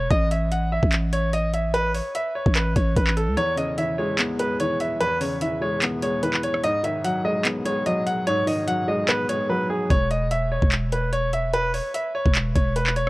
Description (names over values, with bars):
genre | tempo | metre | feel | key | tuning
hip hop, trap | 147 BPM | 4/4 | half-time | E major | A4 = 437 Hz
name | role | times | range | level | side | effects
clear concert grand piano | melody | 0.0-13.1 s | G#4 to F#5 | -24 LUFS | equal | low-pass filter
growling 808-style bass | bass | 0.0-3.4, 9.9-13.1 s | E1 to C#2 | -24 LUFS | equal | none
trap drum kit | drums | 0.1-13.1 s | handclaps, hi-hat, kick drum, rim click | -23 LUFS | equal | none
felt-muted upright piano | accompaniment | 3.4-9.9 s | E2 to B3 | -26 LUFS | left 1 dB | low-pass filter
room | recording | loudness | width
little or no reverb | worn, warbling old tape, cassette tape, warbly pitch drift | -20 LUFS | side -20 dB against mid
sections
0.0-13.1 A section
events
kick muted 3.4-9.9; silent gap 9.5-9.9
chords
0.1 A; 3.4 E6; 6.6 G#m7; 9.9 C#m/E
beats
| 0.11 0.52 0.92 1.33 | 1.74 2.15 2.56 2.96 | 3.37 3.78 4.19 4.60 | 5.00 5.41 5.82 6.23 | 6.64 7.04 7.45 7.86 | 8.27 8.68 9.09 9.49 | 9.90 10.31 10.72 11.13 | 11.54 11.94 12.35 12.76